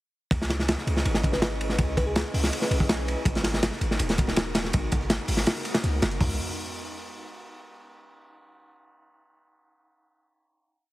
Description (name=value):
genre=drum and bass, jungle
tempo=163 BPM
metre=4/4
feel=straight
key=C# dorian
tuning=A4 = 440 Hz
part: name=airy breathy pad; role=sustained chords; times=0.6-6.3 s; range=G#3 to D#5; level=-35 LUFS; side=equal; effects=chorus
part: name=warm 808-style bass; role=bass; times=0.3-6.4 s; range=D#1 to C#2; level=-28 LUFS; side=equal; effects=none
part: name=crunchy breakbeat drum kit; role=drums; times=0.3-6.3 s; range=hi-hat, kick drum, ride cymbal, snare drum, toms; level=-25 LUFS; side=equal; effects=none
part: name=bell-like FM electric piano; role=melody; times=1.3-2.8 s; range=G#4 to B4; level=-34 LUFS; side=left 1 dB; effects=chorus, cassette tape, dub echo
part: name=dusty soul sampler-style drum kit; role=drums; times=3.3-6.2 s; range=hi-hat, snare drum, tambourine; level=-39 LUFS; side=right 1 dB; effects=high-pass filter on perc, high-pass filter on hats, high-pass filter on snare
room=small room ambience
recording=heavily compressed radio sound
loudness=-23 LUFS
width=side -17 dB against mid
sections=0.3-6.2 drop; 6.2-7.7 final chord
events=drop 0.3-6.2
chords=0.3 C#m7; 3.3 G#m7; 6.2 C#m7